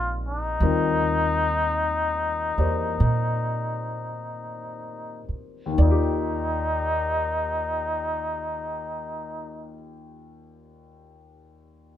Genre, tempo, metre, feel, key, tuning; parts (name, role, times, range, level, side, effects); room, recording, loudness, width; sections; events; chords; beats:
jazz ballad; 39-55 BPM; 4/4; swing 67% on 8ths; Eb major; A4 = 441 Hz
trumpet with cup mute; melody; 0.0-9.8 s; Eb4 to F4; -26 LUFS; left 2 dB
warm grand piano; accompaniment; 0.0-12.0 s; Eb2 to D5; -30 LUFS; left 4 dB
upright bass; bass; 0.0-9.8 s; Bb1 to Bb2; -26 LUFS; right 1 dB
moderate studio reverb, RT60 0.8 s; minimal, uncompressed stereo recording; -22 LUFS; side -10 dB against mid
0.0-5.8 A section; 5.8-11.9 B section
slowing down 0.0-5.8
0.0 Ebmaj9
| 0.60 1.76 2.99 4.32 | 5.77 7.29 8.81 10.33